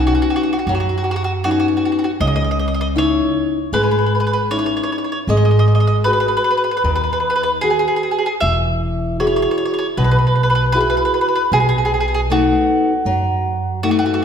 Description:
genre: italian folk, Italian serenade.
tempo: 78 BPM.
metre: 4/4.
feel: swing 53% on 8ths, rubato.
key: E major.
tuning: A4 = 444 Hz.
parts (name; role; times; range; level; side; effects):
mandolin; melody; 0.0-14.2 s; F#4 to E5; -19 LUFS; right 1 dB; none.
nylon-string guitar; accompaniment; 0.0-14.2 s; B2 to B4; -18 LUFS; left 2 dB; none.
upright bass; bass; 0.0-14.0 s; E1 to F#2; -20 LUFS; right 1 dB; none.
room: wet scoring stage reverb, RT60 1.5 s.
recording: recorded in a church or concert hall.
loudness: -14 LUFS.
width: side -7 dB against mid.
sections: 0.0-14.2 A section.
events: none.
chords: 0.0 Badd9; 2.2 C#madd9; 5.3 G#m7; 8.4 Eadd9; 11.5 B7.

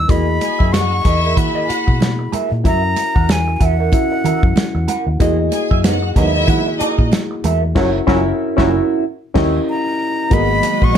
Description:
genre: lush 1970s-style soul.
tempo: 94 BPM.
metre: 4/4.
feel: swing 58% on 16ths.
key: unclear.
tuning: A4 = 436 Hz.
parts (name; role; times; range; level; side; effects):
breathy silver concert flute; melody; 0.0-4.9, 9.7-11.0 s; F#5 to E6; -20 LUFS; left 2 dB; plate reverb.
reed electric piano; accompaniment; 0.0-11.0 s; G3 to F#5; -20 LUFS; left 1 dB; phaser.
vintage muted fingered electric bass; bass; 0.0-11.0 s; F#1 to B2; -19 LUFS; equal; none.
electric guitar through a small old amp; riff; 0.1-11.0 s; B3 to F#5; -24 LUFS; right 4 dB; wah.
warm soul drum kit; drums; 0.1-11.0 s; crash cymbal, hi-hat, kick drum, snare drum; -17 LUFS; equal; none.
congas; percussion; 0.1-11.0 s; none; -25 LUFS; right 6 dB; none.
warm studio string section; second line; 0.4-11.0 s; A#3 to G#5; -23 LUFS; equal; none.
muted trombone section; stabs; 5.8-8.7 s; G#2 to C#4; -22 LUFS; right 4 dB; none.
warm studio string section; sustained chords; 10.3-11.0 s; D#3 to F#4; -24 LUFS; right 5 dB; none.
room: moderate studio reverb, RT60 0.6 s.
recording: none.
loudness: -14 LUFS.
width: side -8 dB against mid.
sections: 0.1-10.3 A section.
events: band accent 7.8-10.3.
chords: 0.1 Emaj9#11; 2.6 F#7; 5.2 Emaj9#11; 7.8 F#7; 9.0 D#7b9; 10.3 G#m9.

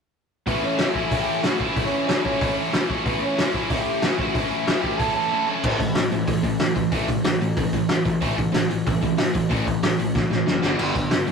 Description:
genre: punk rock.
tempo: 186 BPM.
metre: 4/4.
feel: straight.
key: A mixolydian.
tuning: A4 = 441 Hz.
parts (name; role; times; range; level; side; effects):
lead guitar through a small cranked amp; melody; 0.5-5.4 s; B3 to A5; -27 LUFS; right 2 dB; overdrive, tape echo.
distorted electric guitar; riff; 0.5-11.3 s; G2 to E4; -23 LUFS; equal; overdrive.
loose indie drum kit; drums; 0.5-11.3 s; crash cymbal, hi-hat, kick drum, snare drum; -23 LUFS; equal; none.
fuzz picked electric bass; bass; 5.6-11.3 s; F#1 to A2; -28 LUFS; equal; overdrive.
room: moderate small room reverb, RT60 0.5 s.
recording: rough rehearsal-room recording, warm saturation.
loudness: -20 LUFS.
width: side -6 dB against mid.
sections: 0.5-5.6 A section; 5.6-11.3 B section.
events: drum fill 10.1-10.8.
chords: 0.5 A; 5.6 A5; 10.6 G5.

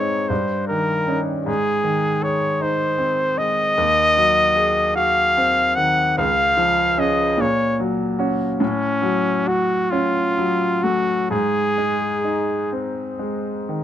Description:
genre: classical, romantic duo for trumpet and grand piano.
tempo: 42-53 BPM (dotted quarters).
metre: 6/8.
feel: rubato.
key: Ab major.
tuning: A4 = 440 Hz.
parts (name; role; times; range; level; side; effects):
clear trumpet; melody; 0.0-12.7 s; Db4 to Gb5; -18 LUFS; equal; none.
bright grand piano; accompaniment; 0.0-13.8 s; Db2 to Ab4; -22 LUFS; equal; none.
room: light reverb.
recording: close, detailed microphones.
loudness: -17 LUFS.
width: side -10 dB against mid.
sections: 0.0-13.8 A section.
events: none.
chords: 0.3 Eb7/G; 1.5 Ab; 3.8 Ab7/Eb; 6.2 Db; 7.4 Gb/Bb; 8.6 Gbm/A; 11.3 Ab.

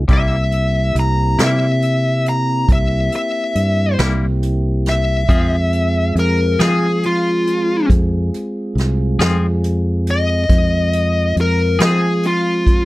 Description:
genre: slow blues.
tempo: 46 BPM (dotted quarters).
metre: 12/8.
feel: straight.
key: F minor.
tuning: A4 = 438 Hz.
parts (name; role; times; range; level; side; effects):
mellow tonewheel organ; sustained chords; 0.0-12.8 s; Ab3 to Ab4; -24 LUFS; right 1 dB; slow rotary speaker.
fingered electric bass; bass; 0.0-12.8 s; C2 to F3; -17 LUFS; equal; none.
smooth overdriven lead guitar; melody; 0.1-12.8 s; F4 to Bb5; -19 LUFS; left 2 dB; none.
clean electric guitar; accompaniment; 0.1-12.1 s; C3 to Ab4; -22 LUFS; left 4 dB; tremolo.
vintage brush drum kit; drums; 0.1-12.8 s; hi-hat, kick drum, snare drum; -17 LUFS; equal; none.
room: little or no reverb.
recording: dark, warm production.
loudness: -14 LUFS.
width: side -18 dB against mid.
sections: 0.0-12.8 A section.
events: lead electric guitar solo 0.0-12.8.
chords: 0.1 C7; 5.3 Fm.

